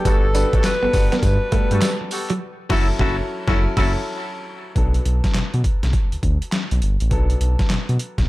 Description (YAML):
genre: R&B, new jack swing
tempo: 102 BPM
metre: 4/4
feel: swing 64% on 16ths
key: unclear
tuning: A4 = 440 Hz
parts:
  - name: mellow alto saxophone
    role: melody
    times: 0.0-2.1 s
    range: A4 to B4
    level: -23 LUFS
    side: equal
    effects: none
  - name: bright concert grand piano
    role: accompaniment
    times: 0.0-8.3 s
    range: F#3 to B4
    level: -28 LUFS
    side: left 2 dB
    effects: none
  - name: direct-recorded clean electric guitar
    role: riff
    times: 0.0-2.4 s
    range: F#3 to D4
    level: -26 LUFS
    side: right 4 dB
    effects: lush chorus
  - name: dark horn section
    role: stabs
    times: 0.1-3.9 s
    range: B3 to A4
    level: -27 LUFS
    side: left 2 dB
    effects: digital delay
  - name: smooth synth bass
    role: bass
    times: 0.1-8.3 s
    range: F#1 to B2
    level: -20 LUFS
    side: equal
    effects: none
  - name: boom bap sampler-style drum kit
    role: drums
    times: 0.1-8.3 s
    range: crash cymbal, handclaps, hi-hat, kick drum, snare drum, tambourine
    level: -21 LUFS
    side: equal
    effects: overdrive, gated reverb
room: digital ambience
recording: none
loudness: -17 LUFS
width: side -18 dB against mid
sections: 0.0-4.8 A section; 4.8-8.3 B section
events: band accent 2.4-4.8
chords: 0.1 Gmaj9; 2.4 F#m7; 4.8 Bm7